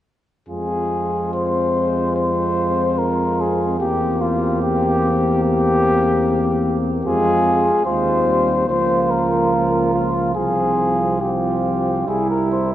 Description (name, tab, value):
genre	classical, brass quintet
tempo	73 BPM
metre	4/4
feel	rubato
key	F minor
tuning	A4 = 439 Hz
part	dark trumpet	melody	0.5-12.7 s	F4 to C5	-20 LUFS	left 3 dB	none
part	mellow flugelhorn	second line	0.5-12.7 s	E4 to G4	-24 LUFS	right 4 dB	none
part	mellow French horn	accompaniment	0.5-12.7 s	Bb3 to E4	-26 LUFS	left 2 dB	none
part	warm trombone	accompaniment	0.5-12.7 s	F3 to Bb3	-25 LUFS	right 2 dB	none
part	mellow tuba	bass	0.5-12.7 s	C2 to F2	-24 LUFS	right 2 dB	none
room	wet church reverb, RT60 3.2 s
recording	worn, warbling old tape, cassette tape, warbly pitch drift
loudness	-16 LUFS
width	side -12 dB against mid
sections	0.5-12.7 A section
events	none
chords	0.5 Fm; 3.8 C7/E; 7.1 Fm; 8.7 Bbm/Db; 10.4 Csus4; 12.1 C